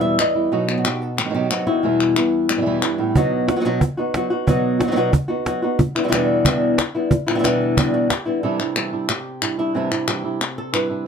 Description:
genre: flamenco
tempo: 182 BPM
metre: 4/4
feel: straight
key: E harmonic minor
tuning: A4 = 439 Hz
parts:
  - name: flamenco guitar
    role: melody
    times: 0.0-11.1 s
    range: E2 to E5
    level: -20 LUFS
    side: left 1 dB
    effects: none
  - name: flamenco guitar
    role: stabs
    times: 0.0-3.2, 8.4-11.1 s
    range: E2 to F#4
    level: -22 LUFS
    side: right 4 dB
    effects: none
  - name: palmas hand claps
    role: percussion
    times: 0.2-3.0, 6.0-10.9 s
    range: none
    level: -24 LUFS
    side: left 5 dB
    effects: none
  - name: cajon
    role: percussion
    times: 3.2-8.3 s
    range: none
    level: -20 LUFS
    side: right 2 dB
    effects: none
room: wet studio reverb, RT60 0.5 s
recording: dark, warm production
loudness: -17 LUFS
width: side -6 dB against mid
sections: 0.0-3.2 A section; 3.2-8.4 B section; 8.4-11.1 C section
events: none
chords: 0.0 Em; 0.5 B; 1.8 Em; 3.2 B; 5.8 Em7; 8.4 Cadd9

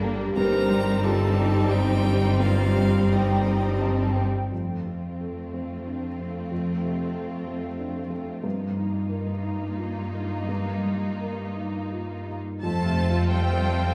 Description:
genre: cinematic, emotional film score for orchestra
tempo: 83-94 BPM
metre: 3/4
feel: rubato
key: unclear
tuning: A4 = 439 Hz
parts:
  - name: rich symphonic violin section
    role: melody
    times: 0.0-13.9 s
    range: D4 to A5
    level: -39 LUFS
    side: equal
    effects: none
  - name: rich symphonic violin section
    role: second line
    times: 0.0-13.9 s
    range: Bb3 to C5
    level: -38 LUFS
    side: equal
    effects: none
  - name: felt-muted upright piano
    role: accompaniment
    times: 0.0-13.9 s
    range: F2 to F5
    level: -31 LUFS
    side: equal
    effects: none
  - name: rich symphonic viola section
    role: accompaniment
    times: 0.0-13.9 s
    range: G3 to F4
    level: -36 LUFS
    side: equal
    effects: none
  - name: mellow French horn section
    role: sustained chords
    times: 0.0-4.1 s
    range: C4 to G4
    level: -33 LUFS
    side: equal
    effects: none
  - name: rich symphonic double bass section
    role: bass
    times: 0.0-4.3, 12.6-13.9 s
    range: G1 to F2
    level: -30 LUFS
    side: equal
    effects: none
  - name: warm symphonic cello section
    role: bass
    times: 0.0-13.9 s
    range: F2 to A3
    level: -31 LUFS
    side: equal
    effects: none
  - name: clear violin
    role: melody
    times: 0.4-4.2 s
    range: Eb5 to Bb5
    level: -38 LUFS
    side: equal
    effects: none
  - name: clear clarinet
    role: second line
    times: 0.4-4.2 s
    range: Eb4 to Bb4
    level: -35 LUFS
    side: equal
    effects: none
  - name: flute section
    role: second line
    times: 3.1-4.5 s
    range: G5 to Bb5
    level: -35 LUFS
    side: equal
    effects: none
room: wet scoring stage reverb, RT60 1.8 s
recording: heard from further back in the room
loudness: -25 LUFS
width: mono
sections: 0.0-4.5 A section; 4.5-12.6 B section; 12.6-13.9 A section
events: none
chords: 0.4 Cm/G; 4.5 F; 8.4 Ebadd9/G; 12.6 F

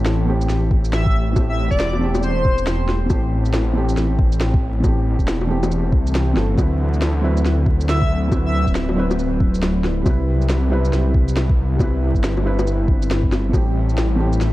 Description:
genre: future garage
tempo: 138 BPM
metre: 4/4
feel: swing 62% on 16ths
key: A dorian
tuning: A4 = 440 Hz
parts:
  - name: felt-muted upright piano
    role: accompaniment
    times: 0.0-14.5 s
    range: E3 to B4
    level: -25 LUFS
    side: right 1 dB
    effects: sidechain pumping, analog delay
  - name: ethereal airy pad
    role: sustained chords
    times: 0.0-14.5 s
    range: E3 to E5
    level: -27 LUFS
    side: equal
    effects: ensemble chorus, built-in reverb, vintage 12-bit sampler grit, sidechain pumping
  - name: swelling detuned saw bass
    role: bass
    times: 0.0-14.5 s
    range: D1 to D2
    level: -19 LUFS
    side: equal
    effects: sidechain pumping
  - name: electronic snare drum, shaker and bongos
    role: drums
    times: 0.1-14.5 s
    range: none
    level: -26 LUFS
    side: left 1 dB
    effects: vintage 12-bit sampler grit
  - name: electronic kick drum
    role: drums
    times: 0.7-13.6 s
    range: none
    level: -18 LUFS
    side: equal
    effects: vintage 12-bit sampler grit
  - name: airy dreamy lead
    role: melody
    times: 0.9-2.9, 7.9-8.6 s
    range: C5 to E5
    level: -25 LUFS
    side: equal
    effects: chorus, analog delay
room: light reverb, digital ambience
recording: dark, warm production, vinyl crackle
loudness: -16 LUFS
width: side -17 dB against mid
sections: 0.0-14.5 A section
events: none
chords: 0.0 Am7; 6.6 D13; 10.1 Cmaj7; 13.5 Am7

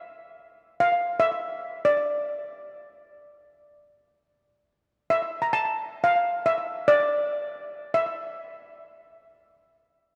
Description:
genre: world meditative, free-time meditation music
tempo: free time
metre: none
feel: none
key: unclear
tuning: A4 = 440 Hz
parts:
  - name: steel pan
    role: solo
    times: 0.0-10.2 s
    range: D5 to Bb5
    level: -26 LUFS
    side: equal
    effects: slapback echo
room: wet plate reverb, RT60 3.2 s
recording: none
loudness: -25 LUFS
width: mono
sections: 0.0-4.1 A section; 4.1-10.2 A section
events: none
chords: none

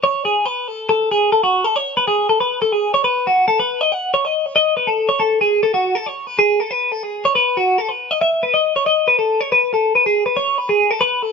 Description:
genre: rock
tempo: 139 BPM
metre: 5/4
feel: straight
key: unclear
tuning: A4 = 440 Hz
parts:
  - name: twelve-string electric guitar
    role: solo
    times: 0.0-11.3 s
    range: F#4 to F#5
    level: -14 LUFS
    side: left 1 dB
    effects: none
room: light reverb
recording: band playing live in one room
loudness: -15 LUFS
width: side -5 dB against mid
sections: 0.9-11.3 A section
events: none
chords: none

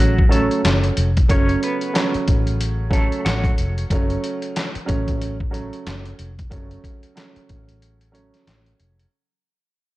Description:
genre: hip hop, boom-bap hip-hop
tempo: 92 BPM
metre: 4/4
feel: swing 59% on 16ths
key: F# harmonic minor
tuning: A4 = 440 Hz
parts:
  - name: clean electric guitar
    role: melody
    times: 0.0-3.5 s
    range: F#3 to C#5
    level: -26 LUFS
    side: equal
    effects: tremolo, high-pass filter, low-pass filter, tape echo
  - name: warm upright piano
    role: accompaniment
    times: 0.0-9.1 s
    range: C#3 to C#4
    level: -24 LUFS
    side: right 3 dB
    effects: high-pass filter, low-pass filter
  - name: vintage muted fingered electric bass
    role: bass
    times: 0.0-9.0 s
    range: E#1 to A1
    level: -23 LUFS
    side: equal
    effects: none
  - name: trip hop sampler-style drum kit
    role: drums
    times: 0.0-9.1 s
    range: handclaps, hi-hat, kick drum, snare drum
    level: -20 LUFS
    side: equal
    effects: none
room: light reverb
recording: dark, warm production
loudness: -17 LUFS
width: side -17 dB against mid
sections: 0.0-9.1 A section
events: fade-out 0.0-9.1; break 7.8-9.1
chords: 0.0 F#m

